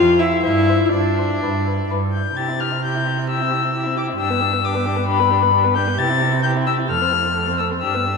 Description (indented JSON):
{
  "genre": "quick classical-period movement for string quartet",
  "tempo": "122-135 BPM",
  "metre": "4/4",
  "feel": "rubato",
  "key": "C major",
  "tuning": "A4 = 440 Hz",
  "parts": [
    { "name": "dark violin", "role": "melody", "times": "0.0-8.2 s", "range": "B4 to A6", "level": "-21 LUFS", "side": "left 9 dB", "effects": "none" },
    { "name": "dark violin", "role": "second line", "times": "0.0-8.2 s", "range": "E4 to F5", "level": "-25 LUFS", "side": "left 3 dB", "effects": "none" },
    { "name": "warm viola", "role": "accompaniment", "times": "0.0-8.2 s", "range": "A3 to F4", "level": "-22 LUFS", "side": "left 2 dB", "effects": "none" },
    { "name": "rich cello", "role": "bass", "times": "0.0-8.2 s", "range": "F2 to C3", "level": "-22 LUFS", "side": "right 4 dB", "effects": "none" }
  ],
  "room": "wet cathedral reverb, RT60 6.0 s",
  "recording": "in a vast, echoing space",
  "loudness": "-16 LUFS",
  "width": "side -4 dB against mid",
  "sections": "0.0-2.4 A section; 2.4-8.2 B section",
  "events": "none",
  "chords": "0.4 Gsus4; 1.4 G; 2.4 C; 4.2 G; 6.0 C; 6.9 F"
}